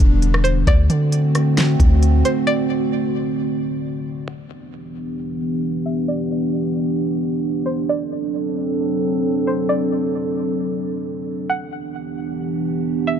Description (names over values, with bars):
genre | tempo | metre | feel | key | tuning
hip hop, atmospheric cloud-rap | 133 BPM | 4/4 | half-time | E minor | A4 = 440 Hz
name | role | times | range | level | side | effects
dark analog pad | sustained chords | 0.0-13.2 s | D3 to A4 | -21 LUFS | right 1 dB | chorus, sidechain pumping, low-pass filter
soft 808-style bass | bass | 0.0-2.2 s | E1 to D3 | -16 LUFS | equal | none
smooth R&B drum kit | drums | 0.0-2.4 s | hi-hat, kick drum, rim click, snare drum | -16 LUFS | equal | none
string-like resonator pluck | melody | 0.4-13.2 s | C5 to F#5 | -26 LUFS | right 1 dB | chorus, low-pass filter, ping-pong delay
room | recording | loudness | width
little or no reverb | dark, warm production | -18 LUFS | side -8 dB against mid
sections
0.0-4.3 A section; 4.3-13.2 B section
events
break 2.5-4.3; filter sweep 4.3-13.2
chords
0.0 Em7; 0.7 D7; 4.3 Em7; 7.9 D7; 11.5 Em7